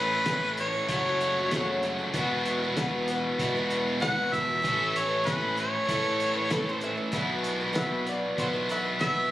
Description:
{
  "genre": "folk rock and heartland rock",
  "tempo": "96 BPM",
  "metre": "4/4",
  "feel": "straight",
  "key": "A major",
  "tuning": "A4 = 438 Hz",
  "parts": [
    { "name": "mellow harmonica", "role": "melody", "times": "0.0-9.3 s", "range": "B4 to F#5", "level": "-27 LUFS", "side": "equal", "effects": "none" },
    { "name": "picked twelve-string acoustic guitar", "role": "accompaniment", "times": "0.0-9.3 s", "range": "F#2 to B4", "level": "-33 LUFS", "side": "left 1 dB", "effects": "none" },
    { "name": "cranked stack guitar", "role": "riff", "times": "0.0-9.3 s", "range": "E2 to A4", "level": "-30 LUFS", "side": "equal", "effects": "overdrive" },
    { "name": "modern bright fingered electric bass", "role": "bass", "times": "0.0-9.2 s", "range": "E1 to A2", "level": "-36 LUFS", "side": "equal", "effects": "none" },
    { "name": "cloth-damped thuddy drum kit", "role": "drums", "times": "0.3-9.2 s", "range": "hi-hat, kick drum, snare drum", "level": "-34 LUFS", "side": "equal", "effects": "none" },
    { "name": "mandolin", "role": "second line", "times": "6.5-9.0 s", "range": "A4 to E5", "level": "-34 LUFS", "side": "right 1 dB", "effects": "none" }
  ],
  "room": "little or no reverb",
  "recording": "recorded on a phone in the room, club reverb, compression",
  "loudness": "-25 LUFS",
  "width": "side -14 dB against mid",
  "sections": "0.0-9.3 A section",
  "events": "none",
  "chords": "0.0 Aadd9; 0.9 F#m; 2.1 Esus2; 4.6 Aadd9; 7.1 Esus2/B"
}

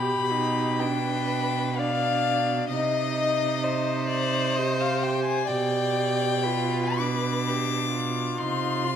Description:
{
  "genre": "classical, slow romantic movement for string quartet",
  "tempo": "55-68 BPM",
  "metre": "3/4",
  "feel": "rubato",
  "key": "C minor",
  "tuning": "A4 = 442 Hz",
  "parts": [
    { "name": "warm violin", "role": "melody", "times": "0.0-9.0 s", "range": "D5 to D6", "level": "-28 LUFS", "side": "left 7 dB", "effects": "none" },
    { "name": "warm violin", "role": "second line", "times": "0.0-9.0 s", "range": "F4 to Eb5", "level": "-30 LUFS", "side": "left 1 dB", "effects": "none" },
    { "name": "warm viola", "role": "accompaniment", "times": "0.0-9.0 s", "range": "D4 to G4", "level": "-30 LUFS", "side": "right 3 dB", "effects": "none" },
    { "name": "warm cello", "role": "bass", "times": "0.0-9.0 s", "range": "B2 to C3", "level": "-29 LUFS", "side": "right 5 dB", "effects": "none" }
  ],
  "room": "moderate recital hall reverb, RT60 1.3 s",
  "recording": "none",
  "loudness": "-23 LUFS",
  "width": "side -8 dB against mid",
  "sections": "0.0-9.0 A section",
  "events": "none",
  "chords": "0.0 G7/B; 2.7 Cm; 5.5 G7/B; 8.4 Cm"
}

